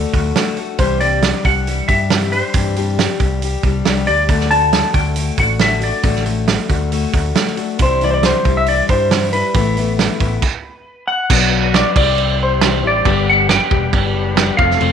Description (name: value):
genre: folk rock and heartland rock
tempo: 137 BPM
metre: 4/4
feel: straight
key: D mixolydian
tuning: A4 = 440 Hz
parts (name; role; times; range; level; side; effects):
- clean lap steel guitar; melody; 0.0-14.9 s; B4 to A5; -17 LUFS; left 1 dB; none
- picked plugged-in steel-string acoustic guitar; accompaniment; 0.0-14.9 s; F2 to G4; -21 LUFS; left 9 dB; none
- picked electric bass; bass; 0.0-14.9 s; E1 to G2; -20 LUFS; equal; none
- loose indie drum kit; drums; 0.1-14.9 s; crash cymbal, hi-hat, kick drum, snare drum; -17 LUFS; right 4 dB; none
- tonewheel organ; sustained chords; 11.3-14.9 s; A3 to C5; -26 LUFS; equal; slow rotary speaker, overdrive
room: wet spring reverb, RT60 1.1 s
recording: 1960s-style stereo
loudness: -13 LUFS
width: side -8 dB against mid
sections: 0.0-11.3 A section; 11.3-14.9 B section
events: stop 10.4-11.3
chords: 0.0 D; 0.8 Cadd9; 4.3 D; 7.8 Cadd9; 9.6 Asus2; 11.3 Bm; 12.0 C; 13.1 G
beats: 0.36 | 0.80 1.23 1.67 2.11 | 2.55 2.98 3.42 3.86 | 4.30 4.74 5.17 5.61 | 6.05 6.49 6.92 7.36 | 7.80 8.24 8.68 9.11 | 9.55 9.99 10.43 10.86 | 11.30 11.74 12.18 12.61 | 13.05 13.49 13.93 14.36 | 14.80